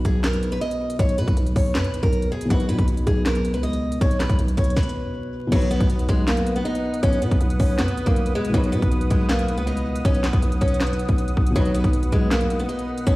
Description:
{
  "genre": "hip hop, trap",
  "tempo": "159 BPM",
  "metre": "4/4",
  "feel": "half-time",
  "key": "B major",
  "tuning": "A4 = 440 Hz",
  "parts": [
    { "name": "felt-muted upright piano", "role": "accompaniment", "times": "0.0-13.2 s", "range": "B2 to B4", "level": "-27 LUFS", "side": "left 1 dB", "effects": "none" },
    { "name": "growling 808-style bass", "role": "bass", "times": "0.0-13.2 s", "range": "B1 to B2", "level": "-23 LUFS", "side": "equal", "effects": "none" },
    { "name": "trap drum kit", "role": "drums", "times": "0.0-13.2 s", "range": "crash cymbal, handclaps, hi-hat, kick drum, snare drum", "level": "-22 LUFS", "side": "equal", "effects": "overdrive" },
    { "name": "picked old ladder-braced acoustic guitar", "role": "melody", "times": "0.1-13.2 s", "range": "F#3 to D#5", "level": "-27 LUFS", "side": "equal", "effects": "none" },
    { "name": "warm analog pad", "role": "sustained chords", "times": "5.5-13.2 s", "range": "B4 to D#6", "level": "-33 LUFS", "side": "equal", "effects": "chorus" }
  ],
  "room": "digital ambience",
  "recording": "played on a big sound system in a bare room, large studio reverb, vinyl crackle",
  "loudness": "-19 LUFS",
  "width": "side -19 dB against mid",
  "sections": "0.0-5.5 A section; 5.5-13.2 B section",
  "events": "stop 4.8-5.5",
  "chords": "0.0 B"
}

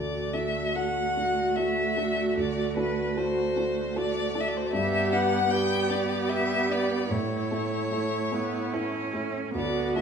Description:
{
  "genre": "classical, slow romantic movement for piano quartet",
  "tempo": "75 BPM",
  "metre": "3/4",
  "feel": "uneven beats, rubato",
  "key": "D major",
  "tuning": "A4 = 437 Hz",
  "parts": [
    { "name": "clear violin", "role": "melody", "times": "0.0-10.0 s", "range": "B4 to G5", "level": "-29 LUFS", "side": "left 3 dB", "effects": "none" },
    { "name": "rich cello", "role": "second line", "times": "0.0-10.0 s", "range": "A3 to C#4", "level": "-33 LUFS", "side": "right 7 dB", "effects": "none" },
    { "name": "dark baby grand piano", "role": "accompaniment", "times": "0.0-10.0 s", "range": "D2 to B4", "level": "-30 LUFS", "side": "left 1 dB", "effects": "none" },
    { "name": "rich viola", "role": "accompaniment", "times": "0.0-10.0 s", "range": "E4 to G4", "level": "-32 LUFS", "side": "right 4 dB", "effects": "none" }
  ],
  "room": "wet recital hall reverb, RT60 1.8 s",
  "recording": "small room ambience",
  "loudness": "-25 LUFS",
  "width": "side -6 dB against mid",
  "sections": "0.0-10.0 A section",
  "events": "none",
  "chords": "0.0 D; 4.7 G; 7.1 A"
}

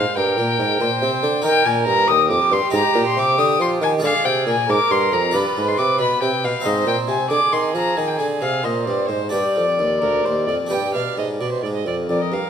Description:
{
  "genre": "classical, baroque-style sonata movement with continuo",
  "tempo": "86-94 BPM (dotted quarters)",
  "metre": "12/8",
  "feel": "straight",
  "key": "unclear",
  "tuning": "A4 = 440 Hz",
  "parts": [
    { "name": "warm violin", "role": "melody", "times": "0.0-12.5 s", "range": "C5 to Eb6", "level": "-20 LUFS", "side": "left 4 dB", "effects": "none" },
    { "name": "dark violin", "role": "second line", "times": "0.0-12.5 s", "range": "G4 to G5", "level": "-24 LUFS", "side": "right 7 dB", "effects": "none" },
    { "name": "harpsichord", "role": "accompaniment", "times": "0.0-12.5 s", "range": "D2 to D5", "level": "-26 LUFS", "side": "equal", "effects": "none" },
    { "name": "mellow bassoon", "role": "bass", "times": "0.0-12.4 s", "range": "D2 to F3", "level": "-22 LUFS", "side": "right 1 dB", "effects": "none" }
  ],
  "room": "moderate recital hall reverb, RT60 1.8 s",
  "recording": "none",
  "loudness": "-16 LUFS",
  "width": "side -8 dB against mid",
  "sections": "0.0-12.1 A section",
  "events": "none",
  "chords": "0.0 Eb; 2.7 Abmaj7; 4.0 Ddim; 5.3 G7; 6.7 Ab; 9.3 Gsus4; 10.7 G"
}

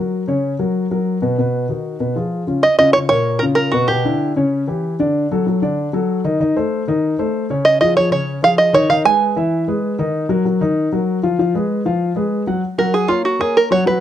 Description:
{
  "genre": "jazz",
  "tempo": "192 BPM",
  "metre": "4/4",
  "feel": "straight",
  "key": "unclear",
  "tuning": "A4 = 440 Hz",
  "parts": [
    { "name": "dark grand piano", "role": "accompaniment", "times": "0.0-14.0 s", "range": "A#2 to F#5", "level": "-17 LUFS", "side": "left 2 dB", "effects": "none" },
    { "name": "open-back banjo", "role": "melody", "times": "2.6-4.3, 7.6-9.6, 12.8-14.0 s", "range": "F4 to G#5", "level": "-14 LUFS", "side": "right 2 dB", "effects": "none" }
  ],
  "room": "light reverb",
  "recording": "close, detailed microphones",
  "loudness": "-15 LUFS",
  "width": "side -10 dB against mid",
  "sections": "0.0-2.6 A section; 2.6-12.6 B section; 12.6-14.0 C section",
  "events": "five-string banjo solo 12.6-14.0",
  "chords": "0.1 Gbadd11; 1.4 B; 2.0 Db7; 2.6 A#madd11; 3.9 Em7; 4.5 C#dim; 5.1 D; 6.4 Adim; 7.7 C#add9; 8.9 Emaj7/D#; 10.1 D#madd9; 11.4 Fdim; 12.6 Gbadd9"
}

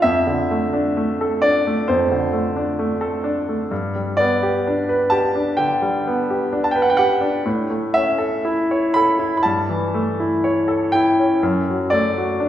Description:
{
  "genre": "classical, romantic nocturne for solo piano",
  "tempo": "59-67 BPM",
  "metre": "4/4",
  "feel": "rubato",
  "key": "unclear",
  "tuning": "A4 = 439 Hz",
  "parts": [
    { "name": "clear concert grand piano", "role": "solo", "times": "0.0-12.5 s", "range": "F2 to B5", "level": "-17 LUFS", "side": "equal", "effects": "none" }
  ],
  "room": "wet recital hall reverb, RT60 1.7 s",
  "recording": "heard from further back in the room",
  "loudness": "-17 LUFS",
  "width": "side -11 dB against mid",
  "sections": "0.0-12.5 A section",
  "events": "none",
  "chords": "0.1 Dm/F; 3.7 G; 7.5 A; 9.4 A7/G; 11.4 D/F#"
}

